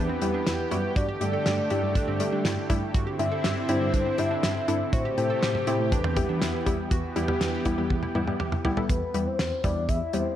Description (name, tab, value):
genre	synth-pop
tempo	121 BPM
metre	4/4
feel	straight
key	E minor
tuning	A4 = 441 Hz
part	soft octave-layered synth lead	melody	0.0-10.4 s	B4 to E5	-30 LUFS	left 2 dB	chorus, tremolo, tape echo
part	lush unison pad	sustained chords	0.0-8.9 s	C3 to G4	-31 LUFS	right 1 dB	chorus
part	analog pluck	arpeggios	0.0-8.9 s	C4 to A4	-36 LUFS	right 4 dB	chorus, tape echo
part	mellow tine electric piano	bass	0.0-10.2 s	D2 to G3	-31 LUFS	equal	medium stereo tremolo
part	warbly dusty pluck	accompaniment	0.2-10.3 s	G3 to A4	-31 LUFS	left 2 dB	chorus
part	damped 70s drum kit	drums	0.2-10.2 s	hi-hat, kick drum, snare drum, toms	-28 LUFS	equal	none
room	moderate plate reverb, RT60 1.4 s, small room ambience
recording	dreamy mix soaked in reverb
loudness	-24 LUFS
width	side -11 dB against mid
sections	0.0-6.9 A section; 6.9-8.9 B section; 8.9-10.4 C section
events	drum fill 7.9-8.9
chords	0.0 Em; 1.0 Cadd9/G; 4.9 Am7; 5.9 Em